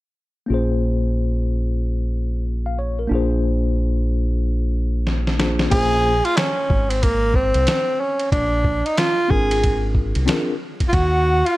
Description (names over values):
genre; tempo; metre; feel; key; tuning
hip hop, jazz-hop; 92 BPM; 4/4; swing 61% on 16ths; unclear; A4 = 439 Hz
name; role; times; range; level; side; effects
tine electric piano; accompaniment; 0.5-10.5 s; Bb3 to F5; -24 LUFS; left 2 dB; medium stereo tremolo
deep dub fingered electric bass; bass; 0.5-11.4 s; Ab1 to Eb2; -21 LUFS; equal; none
boom bap sampler-style drum kit; drums; 5.1-11.6 s; crash cymbal, hi-hat, kick drum, ride cymbal, snare drum; -22 LUFS; equal; none
breathy tenor saxophone; melody; 5.7-11.6 s; Bb3 to Ab4; -19 LUFS; right 1 dB; none
breathy mellow jazz flute; second line; 10.9-11.6 s; F5 to Gb5; -26 LUFS; left 2 dB; none
room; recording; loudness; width
little or no reverb; dark, warm production; -17 LUFS; side -18 dB against mid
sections
0.5-5.7 A section; 5.7-11.6 B section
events
drum fill 5.1-5.7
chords
0.5 Bbm9; 3.1 Bb7; 5.7 Bbm9; 8.3 Bb7; 10.9 Ebm